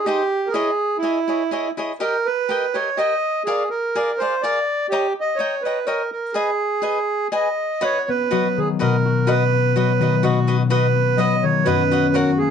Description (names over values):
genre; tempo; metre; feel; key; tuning
mexican folk, mariachi; 124 BPM; 3/4; rubato; G# harmonic minor, B major from 7.8 s; A4 = 440 Hz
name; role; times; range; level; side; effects
accordion; melody; 0.0-12.5 s; E4 to D#5; -20 LUFS; right 3 dB; plate reverb
cavaquinho; accompaniment; 0.1-12.3 s; D#4 to A#5; -24 LUFS; left 3 dB; none
concert harp; arpeggios; 7.8-12.5 s; F#2 to F#4; -19 LUFS; left 5 dB; none
room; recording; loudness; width
moderate small room reverb, RT60 0.5 s; dark, warm production, nothing above 10.6 kHz; -18 LUFS; side -7 dB against mid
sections
0.0-7.8 A section; 7.8-12.5 B section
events
none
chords
0.0 G#; 0.5 C#madd9; 2.0 D#; 3.5 A#7; 4.9 D#7; 6.3 G#m; 7.8 B